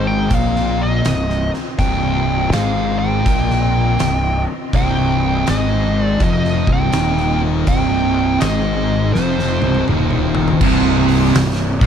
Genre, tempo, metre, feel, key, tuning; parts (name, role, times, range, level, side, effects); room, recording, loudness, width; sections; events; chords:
stoner and doom metal; 82 BPM; 4/4; swing 64% on 8ths; C minor; A4 = 440 Hz
fuzz lead guitar; melody; 0.0-9.8 s; C5 to G5; -22 LUFS; equal; wah, distortion, ping-pong delay
swarming drone; sustained chords; 0.0-11.9 s; C4 to Eb5; -30 LUFS; left 1 dB
thick fuzz guitar; riff; 0.0-11.9 s; C2 to Bb3; -20 LUFS; left 9 dB; distortion
thick fuzz guitar; riff; 0.0-11.9 s; C2 to Bb3; -21 LUFS; right 10 dB; distortion
fuzz fingered electric bass; bass; 0.0-11.9 s; C1 to Bb1; -20 LUFS; equal; overdrive
oversized low-tuned drum kit; drums; 0.3-11.9 s; crash cymbal, hi-hat, kick drum, snare drum, toms; -21 LUFS; equal
distorted electric guitar; riff; 10.6-11.9 s; C2 to Bb3; -22 LUFS; right 1 dB; overdrive
small room ambience; dark, warm production; -14 LUFS; side -8 dB against mid
0.0-10.6 A section; 10.6-11.9 B section
drum fill 9.2-10.6
0.0 Cm; 10.6 C5